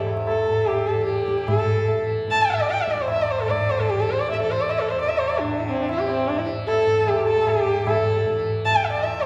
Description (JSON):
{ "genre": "indian classical, Hindustani", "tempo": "151 BPM", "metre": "4/4", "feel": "straight", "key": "E raga malkauns", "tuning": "A4 = 440 Hz", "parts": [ { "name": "warm sarangi", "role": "melody", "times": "0.0-9.3 s", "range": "C4 to A5", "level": "-23 LUFS", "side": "equal", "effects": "none" }, { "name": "tanpura", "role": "drone", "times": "0.0-9.3 s", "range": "E2 to E3", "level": "-34 LUFS", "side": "equal", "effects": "none" }, { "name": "tabla", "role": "percussion", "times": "0.1-9.3 s", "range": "none", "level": "-29 LUFS", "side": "equal", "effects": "none" } ], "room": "wet recital hall reverb, RT60 1.7 s", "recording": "recorded in a church or concert hall", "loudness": "-22 LUFS", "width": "mono", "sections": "0.0-1.5 A section; 1.5-9.3 B section", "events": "speeding up 0.0-9.3", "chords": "none" }